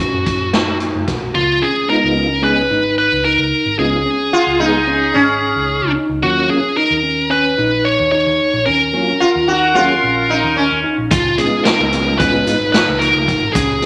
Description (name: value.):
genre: progressive instrumental, band music in an uneven meter.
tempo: 221 BPM (eighths).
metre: 9/8.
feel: straight.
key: unclear.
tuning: A4 = 440 Hz.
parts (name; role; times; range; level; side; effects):
bluesy overdriven lead guitar; melody; 0.0-13.9 s; E#4 to C#5; -18 LUFS; equal; distortion.
tine electric piano; arpeggios; 0.0-13.9 s; C#4 to F#4; -23 LUFS; equal; none.
hollow-body short-scale picked electric bass; bass; 0.1-13.8 s; F#1 to F#2; -28 LUFS; equal; none.
swinging big-band drum kit; drums; 0.3-1.2, 11.1-13.9 s; hi-hat, kick drum, snare drum; -21 LUFS; equal; none.
mellow tonewheel organ; accompaniment; 1.9-13.9 s; F#3 to G#4; -23 LUFS; equal; chorus vibrato, fast rotary speaker.
sitar; second line; 4.3-10.9 s; C#4 to F#4; -18 LUFS; equal; none.
tube shaker; percussion; 11.1-13.8 s; none; -39 LUFS; equal; none.
room: wet large studio reverb, RT60 1.1 s.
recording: none.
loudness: -15 LUFS.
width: mono.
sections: 0.0-1.3 A section; 1.3-13.9 B section.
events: none.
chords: 0.0 F#5; 1.3 C#7; 6.2 D#m7; 11.1 C#7.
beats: 0.26 0.54 0.81 1.08 | 1.35 1.62 1.89 2.16 2.43 2.71 2.98 3.25 3.52 | 3.79 4.06 4.33 4.60 4.87 5.14 5.42 5.69 5.96 | 6.23 6.50 6.77 7.04 7.32 7.59 7.86 8.13 8.40 | 8.67 8.94 9.21 9.48 9.76 10.03 10.30 10.57 10.84 | 11.11 11.38 11.65 11.93 12.20 12.47 12.74 13.01 13.28 | 13.55 13.82.